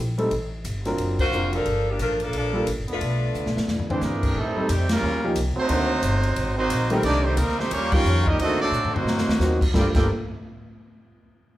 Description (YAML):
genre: jazz, big band swing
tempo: 178 BPM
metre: 4/4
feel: swing 62% on 8ths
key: G minor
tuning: A4 = 439 Hz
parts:
  - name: upright bass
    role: bass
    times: 0.0-10.1 s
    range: E#1 to A2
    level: -26 LUFS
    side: equal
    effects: none
  - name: warm grand piano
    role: accompaniment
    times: 0.2-10.1 s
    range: Eb3 to G5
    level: -26 LUFS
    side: equal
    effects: none
  - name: swinging big-band drum kit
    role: drums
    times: 0.2-10.0 s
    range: crash cymbal, hi-hat, kick drum, ride cymbal, snare drum, toms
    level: -27 LUFS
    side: equal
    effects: none
  - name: bright saxophone section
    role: melody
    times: 1.2-4.0 s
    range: E#3 to C5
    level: -26 LUFS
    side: left 1 dB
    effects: none
  - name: clear trombone section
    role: second line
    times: 2.9-10.1 s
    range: G2 to G4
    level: -28 LUFS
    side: right 2 dB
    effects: none
  - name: bright trumpet section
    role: melody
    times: 3.9-10.1 s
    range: Gb3 to G5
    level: -26 LUFS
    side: right 1 dB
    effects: none
room: moderate large studio reverb, RT60 0.8 s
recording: band playing live in one room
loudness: -20 LUFS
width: side -15 dB against mid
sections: 0.0-4.4 A section; 4.4-9.7 B section; 9.7-11.1 C section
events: band accent 1.2, 4.9, 7.9; drum fill 3.3-4.0, 8.7-9.4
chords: 0.3 Gm11; 1.0 D7alt; 1.7 Gm9; 3.0 Bm7b5; 3.7 E7alt; 4.4 Am7b5; 5.0 Eb9; 5.7 D7b9b13; 6.4 Ab9; 7.0 Am7b5; 7.7 Eb9; 8.4 D7b9b13; 9.1 Ab9; 9.7 Gm9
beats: | 0.31 0.65 0.98 1.32 | 1.66 2.00 2.33 2.67 | 3.01 3.34 3.68 4.02 | 4.35 4.69 5.03 5.36 | 5.70 6.04 6.37 6.71 | 7.04 7.38 7.72 8.05 | 8.39 8.73 9.06 9.40 | 9.73